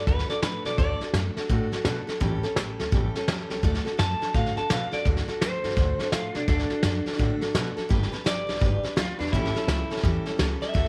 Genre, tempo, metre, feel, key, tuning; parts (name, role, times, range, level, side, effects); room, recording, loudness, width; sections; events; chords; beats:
rockabilly; 169 BPM; 4/4; swing 63% on 8ths; D major; A4 = 440 Hz
electric guitar through a small old amp; melody; 0.0-1.0, 4.0-10.9 s; D4 to A5; -33 LUFS; equal; tape echo
picked steel-string acoustic guitar; accompaniment; 0.0-10.9 s; A2 to B4; -34 LUFS; equal
upright bass; bass; 0.0-10.9 s; G1 to B2; -31 LUFS; equal
vintage brush drum kit; drums; 0.1-10.9 s; hi-hat, kick drum, snare drum; -29 LUFS; equal
small room ambience; -26 LUFS; mono
0.0-5.1 A section; 5.1-10.9 B section
clean electric guitar solo 5.1-10.9
0.0 D; 2.2 A7; 3.6 D; 7.9 G; 9.3 A7
0.08 0.43 | 0.79 1.14 1.50 1.85 | 2.21 2.57 2.92 3.28 | 3.63 3.99 4.35 4.70 | 5.06 5.41 5.77 6.13 | 6.48 6.84 7.19 7.55 | 7.91 8.26 8.62 8.97 | 9.33 9.68 10.04 10.39 | 10.75